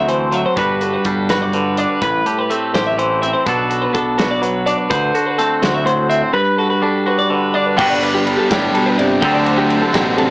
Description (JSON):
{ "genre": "math rock and midwest emo", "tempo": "83 BPM (dotted quarters)", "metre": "6/8", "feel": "straight", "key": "G major", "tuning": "A4 = 438 Hz", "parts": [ { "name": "twangy electric guitar", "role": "accompaniment", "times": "0.0-10.3 s", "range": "G2 to C5", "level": "-17 LUFS", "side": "right 1 dB", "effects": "none" }, { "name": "twelve-string electric guitar", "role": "arpeggios", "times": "0.0-10.3 s", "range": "G4 to G5", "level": "-18 LUFS", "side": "left 1 dB", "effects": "slapback echo" }, { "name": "growling picked electric bass", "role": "bass", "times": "0.0-10.3 s", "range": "G1 to D2", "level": "-23 LUFS", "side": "equal", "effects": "overdrive" }, { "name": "modern studio drum kit", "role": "drums", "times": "0.1-10.3 s", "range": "crash cymbal, hi-hat, kick drum, ride cymbal, snare drum", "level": "-23 LUFS", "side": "equal", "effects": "none" }, { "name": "cranked stack guitar", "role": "riff", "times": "7.8-10.3 s", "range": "D3 to C5", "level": "-18 LUFS", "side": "equal", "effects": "overdrive" } ], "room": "moderate studio ambience, RT60 0.5 s", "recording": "blown-out, overdriven recording, overdrive, small speaker sound", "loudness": "-13 LUFS", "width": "side -23 dB against mid", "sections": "0.0-7.8 A section; 7.8-10.3 B section", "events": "none", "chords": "0.0 D9; 0.6 Gmaj9; 2.0 Am9; 3.5 Bm7; 4.9 D9; 6.3 Gmaj9; 7.8 Gmaj7; 9.2 D7sus4" }